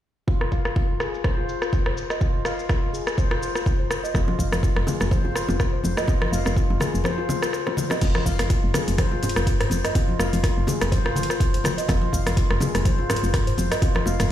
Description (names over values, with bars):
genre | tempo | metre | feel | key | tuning
afro house | 124 BPM | 4/4 | swing 56% on 16ths | F minor | A4 = 441 Hz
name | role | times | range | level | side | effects
handpan | arpeggios | 0.3-14.2 s | F4 to F5 | -28 LUFS | left 2 dB | sidechain pumping, low-pass filter, dub echo
afro-pop drum kit | drums | 0.3-14.3 s | crash cymbal, hi-hat, rim click, shaker, toms | -27 LUFS | equal | low-pass filter on perc, small room ambience, low-pass filter on snare, low-pass filter on hats, low-pass filter on cymbals, low-pass filter on toms
electronic kick drum | drums | 0.3-13.9 s | none | -23 LUFS | equal | small room ambience
woody FM bass | bass | 4.1-14.3 s | F1 | -26 LUFS | equal | sidechain pumping
bongos | percussion | 4.3-14.2 s | none | -33 LUFS | right 1 dB | none
congas | percussion | 4.3-14.3 s | none | -29 LUFS | left 3 dB | none
room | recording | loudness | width
light reverb | played on a big sound system in a bare room, stone room reverb | -20 LUFS | side -11 dB against mid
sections
0.3-8.0 A section; 8.0-14.3 B section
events
break 7.0-8.0; drum fill 7.5-8.0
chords
none